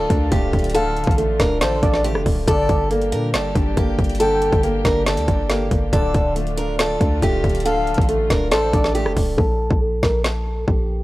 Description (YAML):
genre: hip hop, trap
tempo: 139 BPM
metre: 4/4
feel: half-time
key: D minor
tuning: A4 = 440 Hz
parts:
  - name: picked steel-string acoustic guitar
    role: melody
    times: 0.0-11.0 s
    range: G4 to Bb4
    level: -22 LUFS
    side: equal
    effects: low-pass filter, tape echo
  - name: dark grand piano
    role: accompaniment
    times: 0.0-9.4 s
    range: D3 to D5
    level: -25 LUFS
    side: right 1 dB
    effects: none
  - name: dark studio string section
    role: sustained chords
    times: 0.0-9.3 s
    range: D3 to G4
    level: -31 LUFS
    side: left 2 dB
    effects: none
  - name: warm 808-style bass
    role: bass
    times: 0.0-11.0 s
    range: D1 to Bb2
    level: -23 LUFS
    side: equal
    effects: none
  - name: trap drum kit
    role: drums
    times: 0.1-10.8 s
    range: hi-hat, kick drum, rim click, snare drum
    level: -20 LUFS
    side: equal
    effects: none
  - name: warm velvety synth lead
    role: second line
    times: 0.8-8.9 s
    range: C5 to G5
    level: -27 LUFS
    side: left 1 dB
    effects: chorus, tape echo
room: little or no reverb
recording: dry, gritty hardware recording, transformer saturation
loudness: -16 LUFS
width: side -18 dB against mid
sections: 0.0-9.4 A section; 9.4-11.0 B section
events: hi-hats muted 9.4-11.0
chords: 0.0 Dm; 2.5 Gm; 5.9 Dm; 9.4 Bb5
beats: 0.32 | 0.75 1.18 1.61 2.04 | 2.48 2.91 3.34 3.77 | 4.20 4.63 5.07 5.50 | 5.93 6.36 6.79 7.22 | 7.66 8.09 8.52 8.95 | 9.38 9.81 10.24 10.68